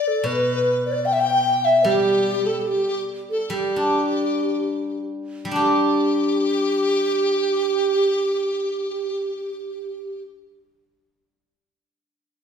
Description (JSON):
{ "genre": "chinese traditional, Chinese chamber ensemble", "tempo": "50-76 BPM", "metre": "2/4", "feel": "rubato", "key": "G gong mode", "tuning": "A4 = 440 Hz", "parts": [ { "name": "mellow hollow xiao", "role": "melody", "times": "0.0-10.2 s", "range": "G4 to G5", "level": "-23 LUFS", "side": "right 4 dB", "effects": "none" }, { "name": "mellow hollow large dizi", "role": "second line", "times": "0.0-10.2 s", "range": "G4 to G5", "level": "-24 LUFS", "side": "left 4 dB", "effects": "none" }, { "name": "steel-string zither", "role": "accompaniment", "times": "0.2-11.5 s", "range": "B2 to G4", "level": "-24 LUFS", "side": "left 2 dB", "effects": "none" } ], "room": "wet recital hall reverb, RT60 1.4 s", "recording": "heard from further back in the room", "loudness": "-19 LUFS", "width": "side -7 dB against mid", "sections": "0.0-5.6 A section; 5.6-10.2 B section", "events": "slowing down 1.9-5.6", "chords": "none", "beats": "| 0.26 1.05 | 1.85 2.65 | 3.50 4.46 | 5.56 6.75 | 7.91 9.06" }